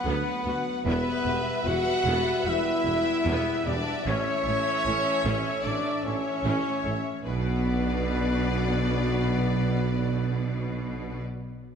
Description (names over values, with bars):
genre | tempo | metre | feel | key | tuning
cinematic, epic orchestral film score | 75 BPM | 4/4 | straight | B minor | A4 = 440 Hz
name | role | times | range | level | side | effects
warm symphonic violin section | melody | 0.0-11.2 s | D5 to F#5 | -36 LUFS | left 6 dB | none
warm symphonic violin section | second line | 0.0-11.2 s | B4 to F#5 | -36 LUFS | left 3 dB | none
clear symphonic viola section | accompaniment | 0.0-11.2 s | B3 to F#5 | -36 LUFS | equal | none
mellow French horn section | sustained chords | 0.0-11.2 s | B3 to F#4 | -30 LUFS | left 3 dB | none
warm trombone section | sustained chords | 0.0-11.2 s | E3 to D4 | -38 LUFS | right 3 dB | none
warm trumpet section | stabs | 0.0-11.2 s | B4 to F#5 | -33 LUFS | right 3 dB | none
dark symphonic double bass section | bass | 0.1-11.2 s | E1 to D2 | -32 LUFS | right 2 dB | none
mellow tuba | bass | 0.1-11.2 s | E1 to D2 | -34 LUFS | right 4 dB | none
rich studio cello section | bass | 0.1-11.2 s | D2 to B2 | -33 LUFS | right 1 dB | none
room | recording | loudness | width
wet scoring stage reverb, RT60 2.2 s | none | -24 LUFS | side -7 dB against mid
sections
0.0-7.2 A section; 7.2-10.4 B section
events
none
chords
0.0 Bm/D; 0.9 Em; 4.1 A; 7.2 Bm